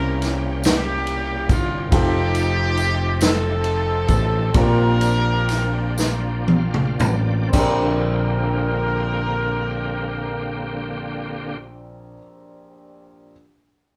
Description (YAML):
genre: slow gospel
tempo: 37-47 BPM (dotted quarters)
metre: 6/8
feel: straight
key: Bb major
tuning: A4 = 442 Hz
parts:
  - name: warm horn section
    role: melody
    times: 0.0-11.6 s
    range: Bb3 to Bb4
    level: -28 LUFS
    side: equal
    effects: none
  - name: warm upright piano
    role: accompaniment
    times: 0.0-13.3 s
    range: Bb1 to E5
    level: -29 LUFS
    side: equal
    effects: none
  - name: bright tonewheel organ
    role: sustained chords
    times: 0.0-11.6 s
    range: C3 to F5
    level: -32 LUFS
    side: equal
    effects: fast rotary speaker, overdrive, chorus vibrato
  - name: fingered electric bass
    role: bass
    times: 0.0-12.2 s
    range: F1 to C2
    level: -26 LUFS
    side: equal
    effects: none
  - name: swinging big-band drum kit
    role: drums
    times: 0.2-7.8 s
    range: crash cymbal, kick drum, ride cymbal, snare drum, toms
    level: -24 LUFS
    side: equal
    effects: none
  - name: tambourine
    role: percussion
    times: 0.2-8.0 s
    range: none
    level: -38 LUFS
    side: equal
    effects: none
room: moderate studio reverb, RT60 0.6 s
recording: band playing live in one room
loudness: -21 LUFS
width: mono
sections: 0.0-7.5 A section; 7.5-10.8 B section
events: slowing down 1.9-7.5; drum fill 6.0-7.5; tonewheel organ fill 6.0-7.5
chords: 0.0 C7b9; 1.9 F9; 4.6 Bb69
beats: 0.65 | 1.92 3.21 | 4.55 5.98 | 7.54 9.17